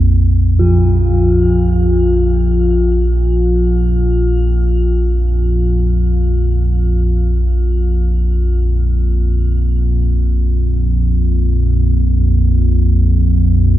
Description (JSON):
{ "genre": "dark ambient drone", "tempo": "free time", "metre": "none", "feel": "none", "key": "unclear", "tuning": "A4 = 443 Hz", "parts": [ { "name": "deep rumbling drone", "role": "drone", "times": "0.0-13.8 s", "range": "Bb1 to F2", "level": "-12 LUFS", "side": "equal", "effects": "built-in reverb" }, { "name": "quartz singing bowl", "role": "texture", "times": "0.6-13.8 s", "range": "F3 to F4", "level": "-19 LUFS", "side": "left 2 dB", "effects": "shimmer reverb" } ], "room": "wet cathedral reverb, RT60 5.4 s", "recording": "worn, warbling old tape, cassette tape, warbly pitch drift", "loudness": "-12 LUFS", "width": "side -13 dB against mid", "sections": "0.6-13.8 A section", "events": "none", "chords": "0.0 Bb5", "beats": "free time" }